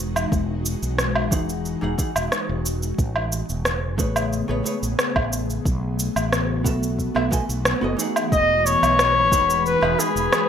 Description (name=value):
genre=sunset chillout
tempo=90 BPM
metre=4/4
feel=straight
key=E major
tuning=A4 = 441 Hz
part: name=ethereal airy pad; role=sustained chords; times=0.0-10.5 s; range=C#3 to G#4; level=-28 LUFS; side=left 1 dB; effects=ensemble chorus, built-in reverb, phaser
part: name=mellow fretless electric bass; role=bass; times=0.0-10.3 s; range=E1 to B1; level=-26 LUFS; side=equal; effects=none
part: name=electronic woodblock, cabasa and rim click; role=drums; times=0.2-10.5 s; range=none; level=-24 LUFS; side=right 1 dB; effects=none
part: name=electronic kick drum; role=drums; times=0.3-9.5 s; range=none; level=-24 LUFS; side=equal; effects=none
part: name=vintage hollow-body jazz guitar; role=accompaniment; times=1.3-10.1 s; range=E3 to G#5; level=-28 LUFS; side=moving between left 2 dB and right 5 dB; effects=auto-pan, ping-pong delay
part: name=warm flugelhorn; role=melody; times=8.3-10.5 s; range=G#4 to D#5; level=-18 LUFS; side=left 2 dB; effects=ping-pong delay
part: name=wind-like tuned noise texture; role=texture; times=8.6-10.5 s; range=B4 to B5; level=-29 LUFS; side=equal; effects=built-in reverb
room=moderate plate reverb, RT60 1.6 s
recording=rough home demo mix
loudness=-19 LUFS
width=side -8 dB against mid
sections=0.0-10.5 A section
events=none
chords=0.0 Emaj9; 3.0 Amaj9; 5.7 B7sus4; 8.3 Emaj9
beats=| 0.32 0.99 1.66 2.32 | 2.99 3.66 4.32 4.99 | 5.66 6.32 6.99 7.66 | 8.32 8.99 9.66 10.32